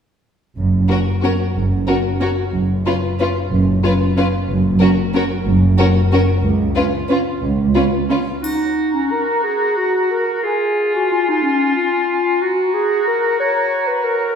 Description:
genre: classical, orchestral ballroom waltz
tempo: 182 BPM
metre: 3/4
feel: uneven beats, rubato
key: F# major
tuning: A4 = 440 Hz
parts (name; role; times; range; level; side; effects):
- warm chamber cello section; bass; 0.6-7.7 s; C#2 to F#2; -19 LUFS; right 1 dB; none
- warm chamber double bass section; bass; 0.6-7.7 s; F#1 to C#2; -19 LUFS; right 1 dB; none
- rich chamber violin section; melody; 0.9-8.2 s; A#4 to B4; -25 LUFS; left 4 dB; none
- rich chamber violin section; second line; 0.9-8.2 s; E#4 to F#4; -23 LUFS; left 3 dB; none
- rich chamber viola section; accompaniment; 0.9-8.2 s; C#4; -23 LUFS; right 3 dB; none
- clear oboe; second line; 8.4-14.3 s; E#4 to F#4; -22 LUFS; right 1 dB; none
- mellow flute section; second line; 8.4-14.3 s; G#5 to A#5; -23 LUFS; left 2 dB; none
- warm clarinet; second line; 8.4-14.4 s; C#4 to C#5; -17 LUFS; left 1 dB; none
- triangle; percussion; 8.4-9.1 s; none; -34 LUFS; left 4 dB; none
room: wet concert hall reverb, RT60 1.8 s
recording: heard from further back in the room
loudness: -15 LUFS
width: side -7 dB against mid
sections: 0.6-8.4 A section; 8.4-14.4 B section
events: none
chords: 0.6 F#5; 6.4 N.C.; 8.4 F#; 10.4 C# (rootless); 12.4 F#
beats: | 0.56 0.89 1.23 | 1.56 1.88 2.22 | 2.54 2.86 3.20 | 3.52 3.84 4.17 | 4.49 4.81 5.14 | 5.46 5.78 6.12 | 6.44 6.76 7.10 | 7.42 7.75 8.10 | 8.43 8.77 9.11 | 9.43 9.76 10.11 | 10.43 10.76 11.11 | 11.43 11.76 12.10 | 12.42 12.74 13.08 | 13.39 13.71 14.05

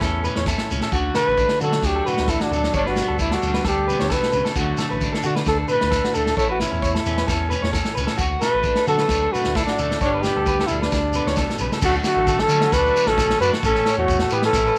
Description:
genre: highlife guitar band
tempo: 132 BPM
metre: 4/4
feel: swing 53% on 16ths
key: D major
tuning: A4 = 440 Hz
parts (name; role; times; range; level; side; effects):
- trumpet with bucket mute; melody; 0.0-14.8 s; D4 to B4; -23 LUFS; equal; none
- electric guitar at the edge of break-up; accompaniment; 0.0-14.8 s; G2 to G4; -30 LUFS; equal; spring reverb
- electric guitar through a small old amp; arpeggios; 0.0-14.8 s; F#4 to C#5; -30 LUFS; equal; vibrato effect, slapback echo
- smooth synth bass; bass; 0.0-14.7 s; G1 to D3; -29 LUFS; equal; none
- vintage drum kit; drums; 0.0-14.7 s; crash cymbal, kick drum, snare drum; -28 LUFS; equal; none
- shekere; percussion; 0.0-14.7 s; none; -33 LUFS; equal; none
- bright trumpet; second line; 11.9-14.8 s; A3 to D4; -32 LUFS; equal; none
room: light reverb, studio reverb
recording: none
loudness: -20 LUFS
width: mono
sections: 0.0-11.8 A section; 11.8-14.8 B section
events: none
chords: 0.0 A; 0.9 D; 2.7 G; 4.6 D; 6.4 A; 8.2 D; 10.0 G; 11.8 D; 13.6 A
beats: 0.01 0.47 | 0.92 1.38 1.83 2.29 | 2.74 3.19 3.65 4.10 | 4.56 5.01 5.47 5.92 | 6.38 6.83 7.29 7.74 | 8.20 8.65 9.10 9.56 | 10.01 10.47 10.92 11.38 | 11.83 12.28 12.73 13.19 | 13.64 14.09 14.55

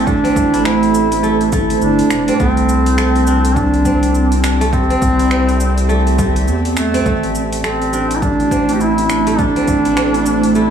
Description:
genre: organic downtempo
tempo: 103 BPM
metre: 4/4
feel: swing 60% on 16ths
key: A minor pentatonic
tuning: A4 = 435 Hz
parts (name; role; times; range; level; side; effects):
- warm duduk; melody; 0.0-10.7 s; A3 to G4; -16 LUFS; right 1 dB; analog delay
- ethereal airy pad; sustained chords; 0.0-10.7 s; A3 to E5; -19 LUFS; right 3 dB; ensemble chorus, built-in reverb, phaser, vintage 12-bit sampler grit, sidechain pumping
- kora; arpeggios; 0.0-10.7 s; A3 to E4; -21 LUFS; equal; vintage 12-bit sampler grit, dub echo
- round analog bass; bass; 0.0-10.7 s; E1 to E2; -18 LUFS; equal; none
- deep house drum kit; drums; 0.1-10.7 s; cabasa, finger snaps, hi-hat; -26 LUFS; right 1 dB; overdrive
- electronic kick drum; drums; 0.1-9.8 s; none; -20 LUFS; equal; overdrive
room: moderate echo chamber reverb, RT60 2.0 s, small room ambience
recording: echo-heavy mix, studio ambience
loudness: -12 LUFS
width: side -8 dB against mid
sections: 0.0-10.7 A section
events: none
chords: 0.0 Am; 2.4 C; 7.1 Am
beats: | 0.07 0.65 1.24 1.82 | 2.40 2.98 3.56 4.15 | 4.73 5.31 5.89 6.48 | 7.06 7.64 8.22 8.81 | 9.39 9.97 10.55

